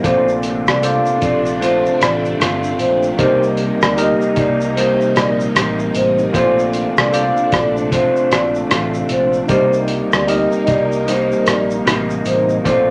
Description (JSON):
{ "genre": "indie pop, bedroom pop", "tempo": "76 BPM", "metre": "4/4", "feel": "swing 60% on 16ths", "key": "unclear", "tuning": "A4 = 440 Hz", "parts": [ { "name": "vibraphone with soft mallets", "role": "second line", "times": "0.0-12.9 s", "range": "C5 to F5", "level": "-20 LUFS", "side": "equal", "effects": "none" }, { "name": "electric guitar through a small old amp", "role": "accompaniment", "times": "0.0-12.9 s", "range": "Bb2 to F4", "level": "-22 LUFS", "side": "equal", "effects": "vibrato effect" }, { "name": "tine electric piano", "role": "accompaniment", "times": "0.0-12.9 s", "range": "Eb4 to Eb5", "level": "-25 LUFS", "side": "equal", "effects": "none" }, { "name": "phased string machine", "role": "sustained chords", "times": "0.0-12.9 s", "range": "C3 to Eb4", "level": "-28 LUFS", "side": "equal", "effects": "ensemble chorus, phaser" }, { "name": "picked electric bass", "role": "bass", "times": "0.0-12.9 s", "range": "G1 to D2", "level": "-28 LUFS", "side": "equal", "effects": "none" }, { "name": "cloth-damped thuddy drum kit", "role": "drums", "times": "0.0-12.9 s", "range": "hi-hat, kick drum, rim click, shaker", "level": "-22 LUFS", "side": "equal", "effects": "none" } ], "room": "moderate large studio reverb, RT60 0.9 s", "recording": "none", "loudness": "-16 LUFS", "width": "mono", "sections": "0.0-12.9 A section", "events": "none", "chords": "0.0 Bbmaj9; 3.2 Cm7; 6.3 Bbmaj9; 9.5 Cm7", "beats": "| 0.04 0.83 1.61 2.40 | 3.19 3.98 4.77 5.55 | 6.34 7.13 7.92 8.71 | 9.50 10.29 11.08 11.87 | 12.66" }